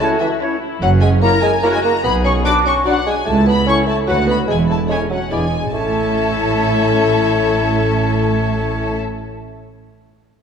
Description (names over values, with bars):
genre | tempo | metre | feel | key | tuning
cinematic, playful, whimsical film cue | 147 BPM | 3/4 | straight | A major | A4 = 440 Hz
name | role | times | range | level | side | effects
rich studio violin section | melody | 0.0-9.0 s | E5 to D6 | -24 LUFS | left 4 dB | none
vibraphone with medium hard mallets | melody | 0.0-9.7 s | E4 to D5 | -27 LUFS | right 2 dB | none
clear oboe | second line | 0.0-9.0 s | A#4 to D5 | -28 LUFS | equal | none
mellow clarinet | second line | 0.0-9.0 s | D4 to F#4 | -27 LUFS | left 2 dB | none
mellow flute section | second line | 0.0-9.0 s | E5 to D6 | -23 LUFS | left 1 dB | none
rich chamber violin section | second line | 0.0-9.0 s | D4 to E5 | -26 LUFS | left 7 dB | none
mellow bassoon | accompaniment | 0.0-9.0 s | E3 to D4 | -21 LUFS | equal | none
rich chamber viola section | accompaniment | 0.0-9.0 s | C#4 to A#4 | -26 LUFS | left 2 dB | none
mellow French horn section | sustained chords | 0.0-9.0 s | C#4 to B4 | -26 LUFS | left 6 dB | none
rich chamber double bass section | bass | 0.8-9.0 s | E1 to D2 | -21 LUFS | right 2 dB | none
warm chamber cello section | bass | 0.8-9.0 s | C#2 to B2 | -21 LUFS | right 2 dB | none
room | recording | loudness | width
wet scoring stage reverb, RT60 2.1 s | none | -14 LUFS | side -7 dB against mid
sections
0.0-5.7 A section; 5.7-8.2 B section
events
none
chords
0.0 F#m7; 0.8 F#7; 2.0 Bm; 3.3 A/C#; 4.1 Bm/D; 4.5 A/E; 5.3 E7; 5.7 A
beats
0.01 0.42 | 0.82 1.23 1.64 | 2.05 2.45 2.86 | 3.27 3.68 4.09 | 4.49 4.91 5.32 | 5.74 6.15 6.56 | 6.97 7.38 7.79